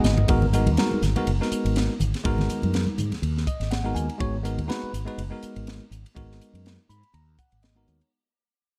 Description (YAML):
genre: electric jazz fusion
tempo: 122 BPM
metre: 4/4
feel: swing 56% on 16ths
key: G# minor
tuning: A4 = 440 Hz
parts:
  - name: bell-like tine electric piano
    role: accompaniment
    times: 0.0-8.1 s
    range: G#3 to B5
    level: -30 LUFS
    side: equal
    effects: phaser
  - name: mellow fretless electric bass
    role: bass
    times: 0.0-8.0 s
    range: F#1 to G#2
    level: -28 LUFS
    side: equal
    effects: lush chorus
  - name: crisp fusion drum kit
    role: drums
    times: 0.0-8.1 s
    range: hi-hat, kick drum, ride cymbal, snare drum, toms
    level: -32 LUFS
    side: equal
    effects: none
  - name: congas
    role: percussion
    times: 0.0-4.1 s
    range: none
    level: -32 LUFS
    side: equal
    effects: none
room: light reverb, studio reverb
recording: dark, warm production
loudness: -25 LUFS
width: mono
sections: 0.3-8.1 A section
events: tine electric piano fill 0.0, 3.2-4.2, 6.6-8.1; drum fill 0.0; fade-out 0.3-8.1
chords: 0.3 G#m9